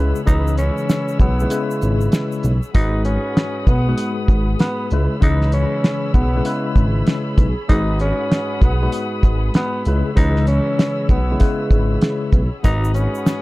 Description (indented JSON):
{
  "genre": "hip hop, boom-bap hip-hop",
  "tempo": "97 BPM",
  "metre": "4/4",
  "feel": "swing 62% on 16ths",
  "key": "G# minor",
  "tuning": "A4 = 444 Hz",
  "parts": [
    { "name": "tine electric piano", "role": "accompaniment", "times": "0.0-13.4 s", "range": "G#2 to B4", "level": "-23 LUFS", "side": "left 2 dB", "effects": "medium stereo tremolo, cassette tape, high-pass filter, low-pass filter" },
    { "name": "dark chamber string section", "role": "sustained chords", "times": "0.0-13.4 s", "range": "G#4 to E6", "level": "-31 LUFS", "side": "left 1 dB", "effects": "high-pass filter, low-pass filter" },
    { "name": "fat analog bass", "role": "bass", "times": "0.0-13.1 s", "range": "G#1 to C#2", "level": "-18 LUFS", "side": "equal", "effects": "none" },
    { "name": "egg shaker", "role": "percussion", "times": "0.2-2.7, 12.6-13.4 s", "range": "none", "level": "-42 LUFS", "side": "right 7 dB", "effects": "none" },
    { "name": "growling tenor saxophone", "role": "melody", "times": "0.3-13.4 s", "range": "B3 to D#4", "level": "-25 LUFS", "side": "equal", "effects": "high-pass filter, low-pass filter, tape echo" },
    { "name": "cloth-damped thuddy drum kit", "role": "drums", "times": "0.3-13.4 s", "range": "hi-hat, kick drum, shaker, snare drum", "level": "-15 LUFS", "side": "equal", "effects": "none" }
  ],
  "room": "small room reverb",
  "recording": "dark, warm production",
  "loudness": "-15 LUFS",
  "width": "side -20 dB against mid",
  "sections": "0.0-2.7 A section; 2.7-13.4 A section",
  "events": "kick muted 1.5-2.7",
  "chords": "0.0 C#m7; 2.7 G#m7; 4.9 C#m7; 7.7 G#m7; 9.9 C#m7; 12.6 G#m7"
}